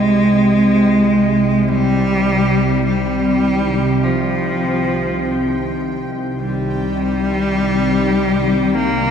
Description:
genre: dark ambient drone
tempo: free time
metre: none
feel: none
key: C minor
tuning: A4 = 438 Hz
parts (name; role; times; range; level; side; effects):
- rich cello; melody; 0.0-9.1 s; F3 to Bb3; -16 LUFS; equal; ping-pong delay
- sweeping resonant pad; sustained chords; 0.0-9.1 s; Eb3 to Eb4; -30 LUFS; left 1 dB; none
- organ-like drone; drone; 0.0-9.1 s; C2 to C3; -18 LUFS; equal; ensemble chorus, built-in reverb
- bubbling stepped-filter texture; texture; 0.0-9.1 s; G5; -35 LUFS; right 1 dB; none
room: wet cathedral reverb, RT60 6.1 s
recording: in a vast, echoing space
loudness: -14 LUFS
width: side -7 dB against mid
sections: 0.0-9.1 A section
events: none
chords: 0.0 Cm

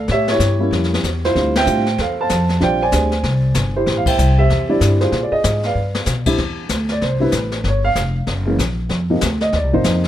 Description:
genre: jazz piano trio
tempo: 191 BPM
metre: 4/4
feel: swing 62% on 8ths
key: unclear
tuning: A4 = 441 Hz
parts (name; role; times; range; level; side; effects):
- dark upright piano; melody; 0.0-10.1 s; C3 to A5; -18 LUFS; right 1 dB; plate reverb
- upright bass; bass; 0.0-10.1 s; F1 to B2; -18 LUFS; equal; none
- jazz brush drum kit; drums; 0.1-10.1 s; brushed snare drum, crash cymbal, hi-hat, kick drum, ride cymbal, snare drum; -23 LUFS; left 3 dB; none
room: light reverb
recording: none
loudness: -15 LUFS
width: side -12 dB against mid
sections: 0.0-6.4 A section; 6.4-10.1 B section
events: band accent 1.5, 4.0; drum fill 5.8-6.1; upright piano solo 6.4-10.1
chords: 0.1 A7b9; 1.3 Dm9; 2.6 Bb13; 3.9 Am7; 5.1 Bb5; 5.8 G7; 6.4 Cmaj9; 7.6 Fsus2; 8.3 F#; 8.9 F7(no3)

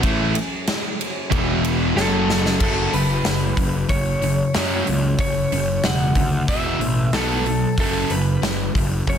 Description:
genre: hard rock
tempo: 93 BPM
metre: 4/4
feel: straight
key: F# minor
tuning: A4 = 441 Hz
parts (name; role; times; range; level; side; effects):
- dark analog pad; sustained chords; 0.0-2.6 s; F#3 to G#4; -35 LUFS; left 1 dB; none
- cranked stack guitar; riff; 0.0-9.2 s; E2 to B3; -24 LUFS; right 8 dB; overdrive
- distorted electric guitar; riff; 0.0-2.6 s; E2 to A3; -26 LUFS; equal; distortion
- sludgy distorted guitar; riff; 0.0-9.2 s; E2 to B3; -24 LUFS; left 8 dB; overdrive
- fuzz picked electric bass; bass; 0.0-9.2 s; E1 to F#2; -25 LUFS; equal; overdrive
- huge arena drum kit; drums; 0.0-9.2 s; crash cymbal, hi-hat, kick drum, ride cymbal, snare drum; -24 LUFS; equal; none
- lightly driven lead guitar; melody; 2.0-9.2 s; A4 to F#5; -25 LUFS; equal; slapback echo
room: light reverb, small room ambience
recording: dense, heavily limited modern master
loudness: -18 LUFS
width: side -8 dB against mid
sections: 0.0-2.6 A section; 2.6-9.2 B section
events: drum fill 2.0-2.6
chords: 0.0 F#m; 1.3 E5; 2.0 F#m; 2.6 F#5; 6.5 E5; 7.1 B5; 7.8 F#5

